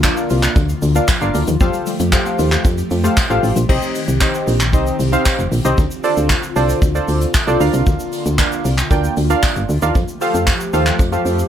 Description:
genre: dance-pop.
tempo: 115 BPM.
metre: 4/4.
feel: straight.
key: C dorian.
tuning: A4 = 441 Hz.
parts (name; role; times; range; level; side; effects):
warm analog keys; accompaniment; 0.0-11.4 s; C4 to C6; -20 LUFS; right 1 dB; chorus, sidechain pumping.
airy breathy pad; sustained chords; 0.0-11.5 s; D3 to G4; -24 LUFS; equal; chorus, sidechain pumping.
mallet-like synth pluck; arpeggios; 0.0-3.7 s; F3 to F5; -26 LUFS; left 9 dB; chorus, sidechain pumping, tape echo.
solid FM bass; bass; 0.0-11.4 s; F1 to F2; -18 LUFS; equal; sidechain pumping.
soft brush drum kit; drums; 0.0-11.5 s; crash cymbal, handclaps, hi-hat, kick drum, shaker; -18 LUFS; equal; none.
tambourine; percussion; 0.0-11.4 s; none; -34 LUFS; right 7 dB; none.
room: light reverb.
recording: none.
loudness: -14 LUFS.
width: side -10 dB against mid.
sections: 0.0-3.7 A section; 3.7-11.5 B section.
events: synth keys fill 2.9-3.7.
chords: 0.0 Bb; 1.6 Fadd9; 3.7 Cm; 5.8 Dm7; 7.6 Bb; 10.0 Fadd9.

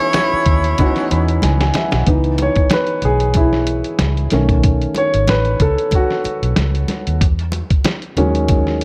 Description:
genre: lush 1970s-style soul.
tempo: 94 BPM.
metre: 4/4.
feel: swing 54% on 16ths.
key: C# minor.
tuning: A4 = 440 Hz.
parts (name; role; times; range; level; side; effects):
breathy tenor saxophone; melody; 0.0-1.4 s; C#5; -21 LUFS; equal; none.
warm grand piano; accompaniment; 0.0-8.8 s; D#3 to B5; -20 LUFS; equal; none.
clear horn section; stabs; 0.0-1.7 s; B2 to E4; -26 LUFS; equal; none.
lo-fi sampler-style drum kit; drums; 0.1-8.8 s; hi-hat, kick drum, snare drum; -20 LUFS; equal; none.
congas; percussion; 0.1-8.7 s; none; -30 LUFS; equal; none.
vintage muted fingered electric bass; bass; 0.3-8.8 s; G#1 to E2; -20 LUFS; equal; none.
room: light reverb, small room ambience.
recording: dark, warm production.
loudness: -16 LUFS.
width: mono.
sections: 0.0-2.1 A section; 2.1-8.8 B section.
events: grand piano fill 0.8-2.1; drum fill 1.4-2.1; grand piano solo 2.1-8.8.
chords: 0.0 C#m9; 4.3 B9; 7.2 Emaj13.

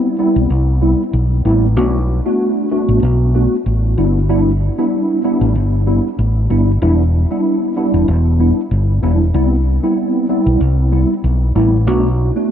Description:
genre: afrobeats.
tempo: 95 BPM.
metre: 4/4.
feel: swing 55% on 16ths.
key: unclear.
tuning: A4 = 436 Hz.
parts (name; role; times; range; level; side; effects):
mellow tine electric piano; accompaniment; 0.0-12.5 s; G3 to F#4; -16 LUFS; equal; ensemble chorus.
fingered electric bass; bass; 0.4-12.3 s; E1 to C2; -14 LUFS; equal; none.
room: moderate huge ambient reverb, RT60 7.9 s.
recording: dreamy mix soaked in reverb.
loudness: -12 LUFS.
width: side -9 dB against mid.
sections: 0.0-12.5 A section.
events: none.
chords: 0.0 Cmaj7; 1.8 Bm7; 4.0 G6; 6.8 Em7; 9.3 Cmaj7; 11.9 Bm7.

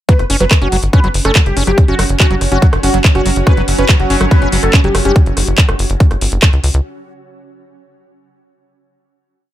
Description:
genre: psychedelic trance.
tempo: 142 BPM.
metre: 4/4.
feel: straight.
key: unclear.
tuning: A4 = 444 Hz.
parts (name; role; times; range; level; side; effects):
wide unison lead; melody; 0.1-5.2 s; F#4 to B4; -19 LUFS; equal; phaser, sidechain pumping, dub echo.
screaming distorted acid line; riff; 0.1-5.1 s; F#3 to C#4; -20 LUFS; equal; distortion, chorus, auto-pan, sidechain pumping, dub echo.
drum and bass drum kit; drums; 0.1-6.8 s; handclaps, hi-hat, rim click; -17 LUFS; equal; none.
electronic kick drum; drums; 0.1-6.5 s; none; -10 LUFS; equal; none.
granular cloud pad; texture; 1.1-5.2 s; C#4 to F#5; -24 LUFS; right 4 dB; built-in reverb, sidechain pumping.
tight sequencer bass; bass; 0.2-6.8 s; F#1 to C#2; -15 LUFS; equal; none.
pulsing gated texture; sustained chords; 3.5-5.2 s; F#3 to C#4; -23 LUFS; right 2 dB; chorus, built-in reverb, sidechain pumping.
room: digital ambience.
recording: none.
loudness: -9 LUFS.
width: side -13 dB against mid.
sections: 0.1-6.8 drop.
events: drop 0.1-6.8.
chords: 0.1 F#5.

